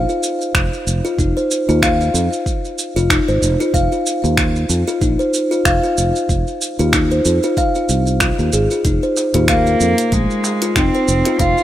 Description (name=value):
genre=organic downtempo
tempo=94 BPM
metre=4/4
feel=swing 56% on 16ths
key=F minor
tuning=A4 = 438 Hz
part: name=kalimba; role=arpeggios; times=0.0-11.6 s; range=Eb4 to F5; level=-18 LUFS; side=left 1 dB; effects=digital delay
part: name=fretless electric bass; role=bass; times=0.0-11.5 s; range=F1 to F2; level=-18 LUFS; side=equal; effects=wide subtle chorus, sidechain pumping
part: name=deep house drum kit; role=drums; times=0.1-11.6 s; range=finger snaps, hi-hat, shaker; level=-21 LUFS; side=right 2 dB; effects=none
part: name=electronic kick drum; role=drums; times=0.5-11.5 s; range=none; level=-21 LUFS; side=equal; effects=none
part: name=darbuka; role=percussion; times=9.2-11.4 s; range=none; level=-28 LUFS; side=left 1 dB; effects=none
part: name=warm cello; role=melody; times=9.5-11.6 s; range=Ab3 to F4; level=-17 LUFS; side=right 2 dB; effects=digital delay
room=light reverb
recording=rough home demo mix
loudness=-14 LUFS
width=side -13 dB against mid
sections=0.0-11.6 A section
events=none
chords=none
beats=0.55 | 1.19 1.82 2.46 3.10 | 3.74 4.38 5.01 5.65 | 6.29 6.93 7.57 8.21 | 8.85 9.48 10.12 10.76 | 11.40